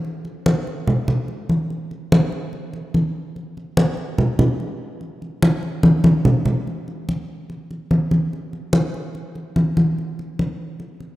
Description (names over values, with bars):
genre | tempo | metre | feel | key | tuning
latin | 145 BPM | 4/4 | straight | none | none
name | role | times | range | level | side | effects
congas | percussion | 0.0-11.2 s | none | -18 LUFS | equal | none
room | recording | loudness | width
moderate lush hall reverb, RT60 2.7 s | rough home demo mix | -18 LUFS | side -16 dB against mid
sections
0.0-6.7 A section; 6.7-11.2 B section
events
drum fill 5.8-6.7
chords
none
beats
| 0.05 0.46 0.88 1.29 | 1.71 2.12 2.54 2.95 | 3.37 3.78 4.19 4.61 | 5.02 5.43 5.85 6.26 | 6.67 7.08 7.50 7.91 | 8.32 8.74 9.15 9.56 | 9.97 10.38 10.80